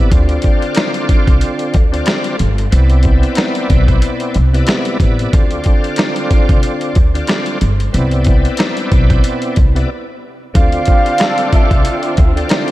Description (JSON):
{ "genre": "hip hop, boom-bap hip-hop", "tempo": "92 BPM", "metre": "4/4", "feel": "swing 56% on 16ths", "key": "D dorian", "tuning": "A4 = 440 Hz", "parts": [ { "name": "bright tonewheel organ", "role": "accompaniment", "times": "0.0-12.7 s", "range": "C3 to D5", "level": "-18 LUFS", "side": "equal", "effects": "overdrive, chorus vibrato, slow rotary speaker, cassette tape, high-pass filter, low-pass filter" }, { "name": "upright bass", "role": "bass", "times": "0.0-12.4 s", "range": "G1 to D2", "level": "-14 LUFS", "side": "equal", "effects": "none" }, { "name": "dusty soul sampler-style drum kit", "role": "drums", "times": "0.1-12.7 s", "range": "hi-hat, kick drum, rim click, snare drum", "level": "-14 LUFS", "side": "equal", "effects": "overdrive" }, { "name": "breathy mellow concert flute", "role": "melody", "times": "10.5-12.0 s", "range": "E5 to F5", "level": "-18 LUFS", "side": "right 2 dB", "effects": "high-pass filter, low-pass filter, diffuse ambient delay" }, { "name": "warm studio string section", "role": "sustained chords", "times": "10.6-12.7 s", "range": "D3 to F4", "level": "-25 LUFS", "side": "equal", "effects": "high-pass filter, low-pass filter" }, { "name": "dark trumpet section", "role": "stabs", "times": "10.9-12.1 s", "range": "G3 to A4", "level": "-24 LUFS", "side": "equal", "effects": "high-pass filter, low-pass filter, diffuse ambient delay" } ], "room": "light reverb, studio reverb", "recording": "none", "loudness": "-11 LUFS", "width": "side -16 dB against mid", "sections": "0.0-10.6 A section; 10.6-12.7 B section", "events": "break 9.9-10.6", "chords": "0.1 Dm7; 2.7 Cmaj9; 5.3 Dm7; 7.9 Cmaj9; 10.6 Dm7" }